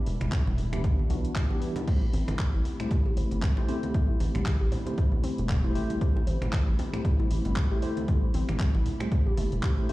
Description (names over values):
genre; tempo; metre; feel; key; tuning
deep house; 116 BPM; 4/4; swing 57% on 16ths; A minor; A4 = 439 Hz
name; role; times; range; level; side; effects
hollow soft pad; sustained chords; 0.0-9.9 s; G3 to B5; -39 LUFS; right 1 dB; ensemble chorus, sidechain pumping
rubbery square bass; bass; 0.1-9.9 s; E1 to B1; -28 LUFS; equal; sidechain pumping
deep house drum kit; drums; 0.1-9.9 s; crash cymbal, finger snaps, handclaps, hi-hat; -40 LUFS; equal; overdrive
congas; percussion; 0.2-9.9 s; none; -37 LUFS; right 1 dB; none
electronic kick drum; drums; 0.3-9.8 s; none; -26 LUFS; equal; none
tine electric piano; stabs; 0.7-9.9 s; E3 to C5; -35 LUFS; equal; medium stereo tremolo, vintage 12-bit sampler grit, sidechain pumping, tape echo
warbly dusty pluck; arpeggios; 1.9-9.9 s; G3 to C5; -37 LUFS; left 2 dB; chorus, cassette tape, sidechain pumping, tape echo
room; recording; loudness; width
little or no reverb; played on a big sound system in a bare room, cassette tape, large studio reverb; -24 LUFS; side -18 dB against mid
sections
0.0-9.9 A section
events
none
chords
0.0 Em7; 1.9 Am7